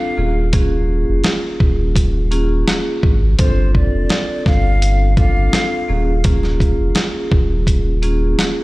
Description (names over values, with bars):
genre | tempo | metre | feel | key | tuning
hip hop, boom-bap hip-hop | 84 BPM | 4/4 | swing 55% on 16ths | unclear | A4 = 439 Hz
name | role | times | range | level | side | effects
breathy mellow jazz flute | melody | 0.0-6.2 s | C5 to F5 | -25 LUFS | left 1 dB | tape echo
vibraphone with medium hard mallets | accompaniment | 0.0-8.6 s | Bb3 to A4 | -21 LUFS | equal | cassette tape
soft dub sub bass | bass | 0.2-8.3 s | Eb1 to Ab1 | -16 LUFS | equal | none
dusty soul sampler-style drum kit | drums | 0.5-8.6 s | hi-hat, kick drum, snare drum | -16 LUFS | equal | none
room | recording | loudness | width
small room ambience | played on a big sound system in a bare room, large studio reverb | -14 LUFS | side -20 dB against mid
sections
0.0-8.6 A section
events
none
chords
0.2 Eb9sus4; 3.4 G9sus4; 5.9 Eb9sus4